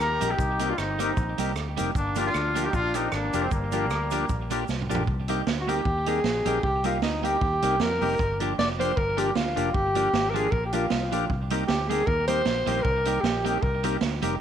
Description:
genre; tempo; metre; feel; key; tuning
ska; 154 BPM; 4/4; swing 55% on 8ths; C minor; A4 = 440 Hz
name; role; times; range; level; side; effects
clear horn section; melody; 0.0-4.6 s; G3 to Bb4; -28 LUFS; left 1 dB; none
fingered electric bass; bass; 0.0-14.4 s; F1 to F2; -31 LUFS; left 1 dB; none
cabasa; percussion; 0.0-5.0 s; none; -47 LUFS; left 12 dB; none
clean electric guitar; accompaniment; 0.2-14.4 s; F3 to G4; -32 LUFS; right 9 dB; tape echo
bright tonewheel organ; stabs; 0.2-14.4 s; C4 to Bb4; -32 LUFS; left 9 dB; overdrive, slow rotary speaker
swinging big-band drum kit; drums; 0.2-14.3 s; hi-hat, kick drum, rim click, snare drum, toms; -30 LUFS; right 3 dB; none
warm alto saxophone; melody; 5.6-13.8 s; Eb4 to D5; -26 LUFS; equal; none
room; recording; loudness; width
moderate plate reverb, RT60 1.2 s; 1960s-style stereo with parts hard left and right; -23 LUFS; side -9 dB against mid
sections
0.0-5.1 A section; 5.1-14.4 B section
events
drum fill 4.7-5.1; alto saxophone solo 5.1-14.4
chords
0.0 Cm7; 2.0 Gm7; 5.1 Cm7; 8.2 Gm7; 11.3 Cm7

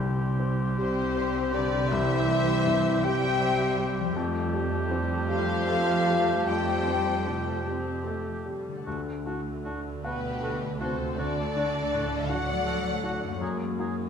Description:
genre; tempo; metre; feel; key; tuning
cinematic, emotional film score for orchestra; 49-54 BPM (dotted quarters); 6/8; rubato; C major; A4 = 437 Hz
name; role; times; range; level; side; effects
mellow silver concert flute; second line; 0.0-13.9 s; A5 to C6; -40 LUFS; left 4 dB; none
warm oboe; second line; 0.0-14.0 s; F#4 to G#4; -36 LUFS; right 1 dB; none
rich studio viola section; accompaniment; 0.0-14.1 s; D3 to C4; -35 LUFS; right 1 dB; none
warm baby grand piano; accompaniment; 0.0-14.1 s; C2 to F#5; -33 LUFS; left 2 dB; none
concert harp; arpeggios; 0.0-14.1 s; F#2 to F#5; -37 LUFS; left 7 dB; none
dark studio double bass section; bass; 0.0-14.1 s; C2 to F#2; -33 LUFS; right 4 dB; none
warm studio violin section; melody; 0.8-13.4 s; B4 to G5; -32 LUFS; left 5 dB; none
dark clarinet; second line; 0.8-13.4 s; B4 to G5; -34 LUFS; left 1 dB; none
warm studio violin section; second line; 0.8-13.4 s; G4 to E5; -37 LUFS; left 4 dB; none
warm French horn section; sustained chords; 0.8-13.4 s; B3 to G4; -33 LUFS; left 3 dB; none
rich studio cello section; bass; 0.8-13.4 s; B2 to G3; -35 LUFS; right 3 dB; none
room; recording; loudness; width
wet scoring stage reverb, RT60 1.7 s; none; -25 LUFS; side -7 dB against mid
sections
0.0-14.1 A section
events
none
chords
0.0 C; 4.2 Fadd9; 8.9 D; 13.4 F#add9

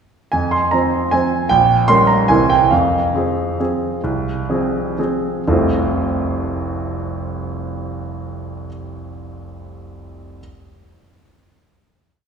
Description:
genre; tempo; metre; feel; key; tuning
classical, piano waltz; 119-161 BPM; 3/4; rubato; unclear; A4 = 440 Hz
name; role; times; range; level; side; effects
clear grand piano; solo; 0.3-10.4 s; F1 to C6; -16 LUFS; right 2 dB; none
room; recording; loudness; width
wet concert hall reverb, RT60 2.6 s; heard from further back in the room; -15 LUFS; side -6 dB against mid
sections
0.3-5.5 A section; 5.5-8.2 final chord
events
slowing down 2.1-5.5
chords
0.3 Fm; 1.5 Gdim/Bb; 2.3 C7; 2.7 Fm; 5.5 F

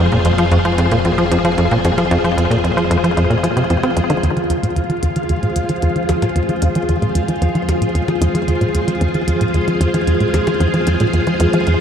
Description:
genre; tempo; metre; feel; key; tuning
ambient, sequencer-driven space music; 113 BPM; 4/4; straight; F minor; A4 = 440 Hz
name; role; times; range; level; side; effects
string machine, full ensemble; sustained chords; 0.0-11.8 s; F4 to C5; -18 LUFS; equal; ensemble chorus
tight sequencer bass; riff; 0.0-11.8 s; F2 to C4; -16 LUFS; equal; ping-pong delay
fat analog bass; bass; 0.0-4.2 s; F1; -23 LUFS; equal; none
electronic hi-hat and percussion blips; percussion; 0.1-11.8 s; none; -30 LUFS; left 4 dB; ping-pong delay
room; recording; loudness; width
wet cathedral reverb, RT60 4.9 s; in a vast, echoing space; -14 LUFS; side -8 dB against mid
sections
0.0-4.2 A section; 4.2-11.8 B section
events
filter sweep on analog synth bass 4.2-11.8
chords
0.0 Fm

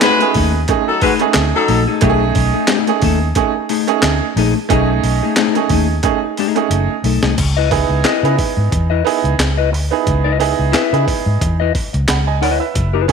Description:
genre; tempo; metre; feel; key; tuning
funk; 90 BPM; 4/4; swing 56% on 16ths; unclear; A4 = 440 Hz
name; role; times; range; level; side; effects
dark horn section; second line; 0.0-1.8 s; F#3 to B4; -17 LUFS; left 2 dB; none
mellow electric guitar; accompaniment; 0.0-13.1 s; A3 to E5; -19 LUFS; left 14 dB; wide subtle chorus
breakbeat sampler-style drum kit; drums; 0.0-13.1 s; crash cymbal, handclaps, hi-hat, kick drum, snare drum; -19 LUFS; equal; none
bright upright piano; stabs; 0.2-13.1 s; A3 to B5; -18 LUFS; right 12 dB; slapback echo
vintage muted fingered electric bass; bass; 0.4-13.1 s; F#1 to C#3; -17 LUFS; equal; none
room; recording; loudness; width
light reverb; 1960s-style stereo with parts hard left and right; -13 LUFS; side -6 dB against mid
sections
0.0-7.4 A section; 7.4-13.1 B section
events
drum fill 6.0-7.4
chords
0.0 B13; 7.4 C#m9

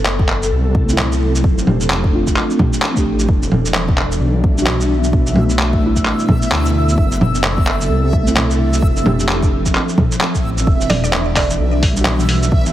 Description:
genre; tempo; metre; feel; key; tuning
future garage; 130 BPM; 4/4; swing 60% on 16ths; E minor; A4 = 441 Hz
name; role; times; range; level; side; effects
ethereal airy pad; sustained chords; 0.0-12.7 s; B2 to A4; -22 LUFS; left 1 dB; ensemble chorus, built-in reverb, phaser, sidechain pumping
dark detuned saw bass; bass; 0.0-12.7 s; E1 to D2; -18 LUFS; equal; sidechain pumping
lo-fi sampler-style drum kit; drums; 0.1-12.7 s; bongos, handclaps, hi-hat, shaker; -18 LUFS; equal; none
electronic kick drum; drums; 0.2-12.6 s; none; -16 LUFS; equal; none
muted felt-like synth keys; accompaniment; 0.9-12.5 s; G3 to G4; -21 LUFS; right 1 dB; chorus, sidechain pumping, digital delay
backwards swelling texture; texture; 4.5-12.7 s; E5; -26 LUFS; right 1 dB; built-in reverb
mallet-like synth pluck; melody; 10.9-11.6 s; D5; -23 LUFS; right 3 dB; chorus, digital delay
room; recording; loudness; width
light reverb; heavily compressed radio sound; -13 LUFS; side -13 dB against mid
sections
0.0-10.7 A section; 10.7-12.7 B section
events
none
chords
0.0 F#m7b5; 1.4 F6; 3.3 Em7; 5.1 Bm7; 7.0 F#m7b5; 8.8 F6; 10.7 Em7

